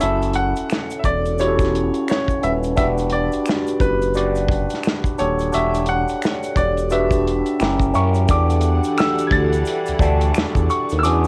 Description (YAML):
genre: R&B, neo-soul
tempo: 87 BPM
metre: 4/4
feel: swing 61% on 16ths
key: E dorian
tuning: A4 = 440 Hz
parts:
  - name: bright grand piano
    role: melody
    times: 0.0-11.3 s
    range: B4 to A6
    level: -26 LUFS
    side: equal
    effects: cassette tape
  - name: overdriven tine electric piano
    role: accompaniment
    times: 0.0-11.3 s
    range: C#4 to D5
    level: -24 LUFS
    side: equal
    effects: phaser, cassette tape
  - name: smooth synth bass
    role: bass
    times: 0.0-11.3 s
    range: D#1 to F#2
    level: -24 LUFS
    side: equal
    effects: none
  - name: warm soul drum kit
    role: drums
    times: 0.0-11.2 s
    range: hi-hat, kick drum, snare drum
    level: -25 LUFS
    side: equal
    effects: cassette tape
  - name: tube shaker and finger snaps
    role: percussion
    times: 0.0-11.3 s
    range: none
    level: -36 LUFS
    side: equal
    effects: none
  - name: warm studio string section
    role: sustained chords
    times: 8.3-11.3 s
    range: E3 to F#5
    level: -29 LUFS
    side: equal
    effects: cassette tape
room: small room ambience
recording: home recording on cassette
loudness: -19 LUFS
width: mono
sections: 0.0-8.3 A section; 8.3-11.3 B section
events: none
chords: 0.0 F#m7; 2.8 Em9; 7.6 F#7b9; 8.3 Em11